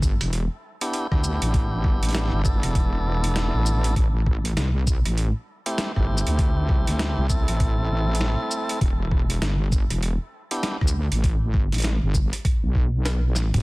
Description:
glitch hop; 99 BPM; 4/4; swing 60% on 16ths; A4 = 440 Hz
wobble bass; bass; 0.0-13.6 s; E1 to D2; -23 LUFS; equal; chorus
boom bap sampler-style drum kit; drums; 0.0-13.6 s; hi-hat, rim click, shaker, snare drum, toms; -29 LUFS; equal; studio reverb
electronic kick drum; drums; 0.0-12.9 s; -22 LUFS; equal; studio reverb
tonewheel organ; stabs; 0.8-10.8 s; A3 to A4; -30 LUFS; equal; overdrive, sidechain pumping, dub echo
digital ambience; dense, heavily limited modern master; -20 LUFS; side -23 dB against mid
0.0-13.6 A section
drum fill 13.4
0.0 Em7; 4.0 Am7; 8.8 Em7

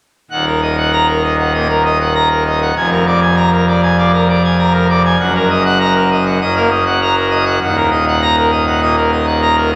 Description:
classical, organ toccata; 99 BPM; 4/4; straight; Eb minor; A4 = 440 Hz
pipe organ, full organ; solo; 0.3-9.8 s; Eb1 to Bb5; -13 LUFS; equal
wet church reverb, RT60 3.1 s; -14 LUFS; mono
0.3-9.8 A section
0.3 Ebm; 2.8 Bb7/F; 5.2 Ebm/Gb; 7.6 Ebm

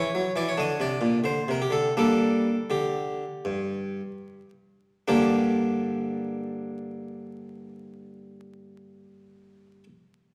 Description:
classical, baroque-style suite movement for harpsichord; 69-92 BPM (dotted quarters); 12/8; rubato; G minor; A4 = 440 Hz
harpsichord; solo; 0.0-9.8 s; G2 to Eb5; -27 LUFS; equal
wet recital hall reverb, RT60 1.7 s; heard from further back in the room, vinyl crackle; -26 LUFS; mono
0.0-5.1 A section; 5.1-8.4 B section
slowing down 0.1-5.1
0.0 C#m; 0.6 Bbadd9; 1.2 Bbmaj13; 1.9 Gm

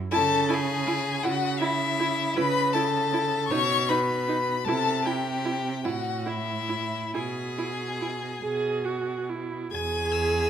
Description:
classical, slow romantic movement for string quartet; 45-54 BPM (dotted quarters); 6/8; rubato; E major; A4 = 444 Hz
rich violin; melody; 0.1-10.5 s; E5 to G#6; -28 LUFS; left 7 dB
rich violin; second line; 0.1-10.5 s; E4 to G#5; -30 LUFS; left 2 dB
clear viola; accompaniment; 0.1-10.5 s; D#4 to G#4; -31 LUFS; right 4 dB
rich cello; bass; 0.1-10.5 s; E2 to C#3; -30 LUFS; right 4 dB
moderate scoring stage reverb, RT60 1.7 s; close, detailed microphones; -24 LUFS; side -8 dB against mid
0.0-9.7 A section
0.1 C#madd11; 3.5 B; 4.7 C; 5.8 A5; 7.1 E/B; 8.4 B5; 9.7 E

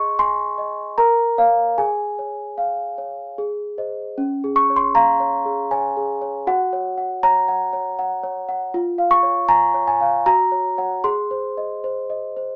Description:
classical, lullaby for celesta; 77 BPM; 3/4; rubato; Db major; A4 = 440 Hz
celesta; solo; 0.0-12.6 s; Db4 to Db6; -20 LUFS; equal
moderate studio reverb, RT60 0.6 s; -20 LUFS; mono
0.0-4.2 A section; 4.2-12.6 B section
0.0 Ab; 1.0 Bbm; 1.8 Db/Ab; 3.4 Ab; 4.2 Db; 6.5 Gb; 8.7 Db/F; 10.3 Gb; 11.0 Ab

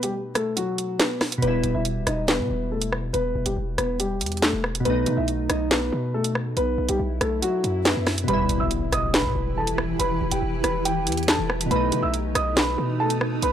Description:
hip hop, drill; 140 BPM; 4/4; half-time; E harmonic minor; A4 = 440 Hz
dark concert grand piano; melody; 0.0-13.5 s; F#3 to E6; -26 LUFS; equal; tape echo
glassy digital keys; accompaniment; 0.0-13.5 s; B2 to E4; -30 LUFS; right 1 dB; chorus, phaser
drill drum kit; drums; 0.0-13.5 s; handclaps, hi-hat, rim click, snare drum; -24 LUFS; equal
hard-hitting 808-style bass; bass; 1.4-13.5 s; D#1 to B2; -28 LUFS; equal
swell and impact; sound effects; 7.0-10.0 s; -33 LUFS; equal
granular cloud pad; sustained chords; 9.1-13.5 s; E3 to B4; -29 LUFS; equal; built-in reverb
little or no reverb; dry, gritty hardware recording, transformer saturation; -21 LUFS; side -10 dB against mid
0.0-8.3 A section; 8.3-13.5 B section
break 0.0-1.4; swell 7.0-8.3; impact 8.3-10.0
0.0 B7; 1.4 Em; 4.9 B7; 8.3 Em; 11.7 B7

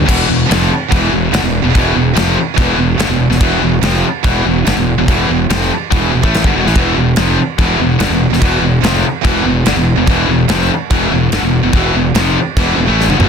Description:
heavy metal; 144 BPM; 4/4; straight; E minor; A4 = 442 Hz
heavy high-gain guitar; riff; 0.0-13.3 s; E2 to A3; -17 LUFS; right 14 dB; distortion
scooped high-gain guitar; riff; 0.0-13.3 s; E2 to A3; -15 LUFS; left 12 dB; distortion
fuzz fingered electric bass; bass; 0.1-13.3 s; E1 to A1; -17 LUFS; equal; overdrive
modern studio drum kit; drums; 0.1-13.3 s; crash cymbal, kick drum, snare drum, toms; -16 LUFS; equal; soft clipping on snare
little or no reverb; dense, heavily limited modern master; -10 LUFS; side -6 dB against mid
0.1-13.3 A section
drum fill 13.0
0.1 Em

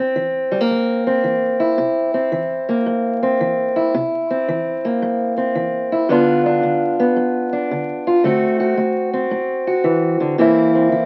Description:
blues; 111 BPM; 4/4; swing 66% on 8ths; A4 = 440 Hz
fingerpicked steel-string acoustic guitar; solo; 0.0-11.1 s; G2 to F#4; -18 LUFS; equal
wet studio reverb, RT60 0.6 s; very old 78 rpm record, vinyl crackle; -18 LUFS; mono
0.0-11.1 A section
0.0 C7; 6.1 G7; 8.2 D7; 10.4 C7

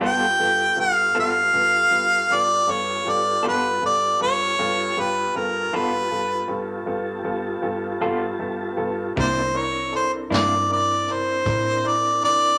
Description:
slow blues; 52 BPM (dotted quarters); 12/8; straight; G mixolydian; A4 = 440 Hz
clear upright piano; accompaniment; 0.0-12.5 s; G2 to A5; -32 LUFS; equal
electric guitar through a small old amp; accompaniment; 0.0-10.5 s; C3 to A4; -29 LUFS; equal; tremolo
tonewheel organ; sustained chords; 0.0-12.6 s; B3 to A5; -34 LUFS; equal; chorus vibrato, slow rotary speaker
bright harmonica; melody; 0.1-12.6 s; Bb4 to G5; -22 LUFS; equal
vintage muted fingered electric bass; bass; 9.2-12.6 s; C2 to A2; -33 LUFS; equal
vintage brush drum kit; drums; 9.2-12.4 s; hi-hat, kick drum, snare drum; -30 LUFS; equal
moderate large studio reverb, RT60 0.9 s; -22 LUFS; mono
0.0-12.6 A section
upright piano fill 8.0-9.2
0.0 G9; 9.2 C9

